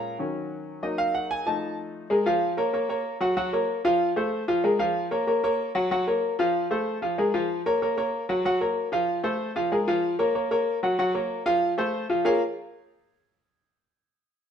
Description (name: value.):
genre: latin.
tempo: 189 BPM.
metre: 4/4.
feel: straight.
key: Bb minor.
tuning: A4 = 437 Hz.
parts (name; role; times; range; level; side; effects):
clear concert grand piano; solo; 0.0-12.4 s; Bb2 to Bb5; -23 LUFS; equal; none.
room: wet stone room reverb, RT60 1.0 s.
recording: band playing live in one room.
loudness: -23 LUFS.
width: side -8 dB against mid.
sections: 0.0-2.1 A section; 2.1-12.2 B section; 12.2-13.5 C section.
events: grand piano solo 0.0-2.1.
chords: 0.2 Ebm7; 0.8 Gb6; 1.5 F7; 2.1 Bbm7; 2.7 Gb; 4.0 F; 4.6 Bbm7; 5.3 Gb; 6.5 F; 7.2 Bbm7; 7.8 Gb; 9.1 F; 9.7 Bbm7; 10.3 Gb; 11.6 F; 12.2 Bbm7.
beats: 0.20 0.51 | 0.83 1.15 1.47 1.78 | 2.10 2.42 2.73 3.05 | 3.37 3.69 4.00 4.32 | 4.64 4.95 5.27 5.59 | 5.91 6.22 6.54 6.86 | 7.17 7.49 7.81 8.13 | 8.44 8.76 9.08 9.39 | 9.71 10.03 10.35 10.66 | 10.98 11.30 11.61 11.93 | 12.25.